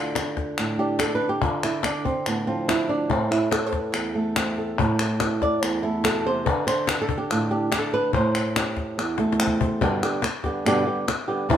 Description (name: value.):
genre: flamenco.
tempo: 143 BPM.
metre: 4/4.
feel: straight.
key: A minor.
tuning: A4 = 440 Hz.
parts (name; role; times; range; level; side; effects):
flamenco guitar; melody; 0.0-11.6 s; E2 to D5; -23 LUFS; right 1 dB; none.
cajon; percussion; 0.2-11.6 s; none; -28 LUFS; left 4 dB; none.
palmas hand claps; percussion; 0.2-11.6 s; none; -28 LUFS; left 2 dB; none.
room: light reverb.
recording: band playing live in one room.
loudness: -21 LUFS.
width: side -10 dB against mid.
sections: 0.0-9.8 A section; 9.8-11.6 B section.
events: nylon-string guitar solo 0.0-9.8; drum fill 9.2-9.8.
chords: 0.0 Dm; 3.1 Am; 6.5 D5; 8.1 Am7; 9.8 G.